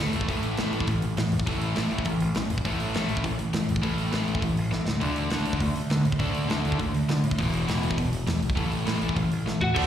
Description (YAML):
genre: punk rock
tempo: 203 BPM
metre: 4/4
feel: straight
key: unclear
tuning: A4 = 440 Hz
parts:
  - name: overdriven electric guitar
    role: riff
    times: 0.0-9.9 s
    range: E2 to D4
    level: -28 LUFS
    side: equal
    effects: slapback echo
  - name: growling picked electric bass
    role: bass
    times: 0.0-9.9 s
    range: E1 to D3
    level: -28 LUFS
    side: equal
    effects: overdrive
  - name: tight metal drum kit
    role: drums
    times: 0.1-9.8 s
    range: crash cymbal, hi-hat, kick drum, snare drum, toms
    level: -30 LUFS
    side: equal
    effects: none
  - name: lightly driven lead guitar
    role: melody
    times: 9.6-9.9 s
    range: F#4 to F#5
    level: -25 LUFS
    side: right 2 dB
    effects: slapback echo
  - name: overdriven electric guitar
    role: riff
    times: 9.8-9.9 s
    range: D3 to D4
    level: -25 LUFS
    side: left 1 dB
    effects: none
room: light reverb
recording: live gig heard through the venue's PA, recital hall reverb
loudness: -24 LUFS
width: side -10 dB against mid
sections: 0.0-9.8 A section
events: drum fill 4.7, 9.5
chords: 0.0 A5; 4.9 D5; 7.4 E5; 8.6 A5